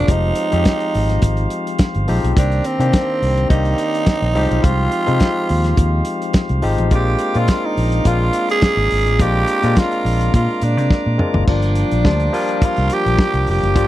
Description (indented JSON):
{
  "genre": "disco",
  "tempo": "105 BPM",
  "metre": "4/4",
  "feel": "straight",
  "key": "unclear",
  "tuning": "A4 = 440 Hz",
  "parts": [
    { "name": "growling tenor saxophone", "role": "melody", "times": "0.0-13.9 s", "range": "C4 to Ab4", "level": "-20 LUFS", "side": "right 3 dB", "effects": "none" },
    { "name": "barky tine electric piano", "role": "accompaniment", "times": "0.0-13.9 s", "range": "Eb3 to D5", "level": "-22 LUFS", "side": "left 5 dB", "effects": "auto-pan" },
    { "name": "tonewheel organ", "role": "sustained chords", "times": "0.0-13.9 s", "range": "F4 to D6", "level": "-28 LUFS", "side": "right 1 dB", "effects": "stopped rotary speaker" },
    { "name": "fingered electric bass", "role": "bass", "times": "0.0-13.9 s", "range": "F1 to C3", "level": "-18 LUFS", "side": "equal", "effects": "none" },
    { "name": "warm soul drum kit", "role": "drums", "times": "0.1-13.9 s", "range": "crash cymbal, hi-hat, kick drum, snare drum, toms", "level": "-16 LUFS", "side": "equal", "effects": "none" }
  ],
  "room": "little or no reverb",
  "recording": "dry, close 1970s-style studio recording",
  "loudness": "-14 LUFS",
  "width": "side -14 dB against mid",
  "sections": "0.0-11.5 A section; 11.5-13.9 B section",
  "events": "drum fill 10.9-11.5",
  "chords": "0.1 Fm7; 2.4 Cm7; 4.4 Fm7; 6.9 Bb7; 11.5 Gm7",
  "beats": "| 0.08 0.65 1.22 1.79 | 2.36 2.93 3.50 4.07 | 4.64 5.21 5.78 6.35 | 6.92 7.49 8.05 8.62 | 9.19 9.76 10.33 10.90 | 11.47 12.05 12.62 13.19 | 13.76"
}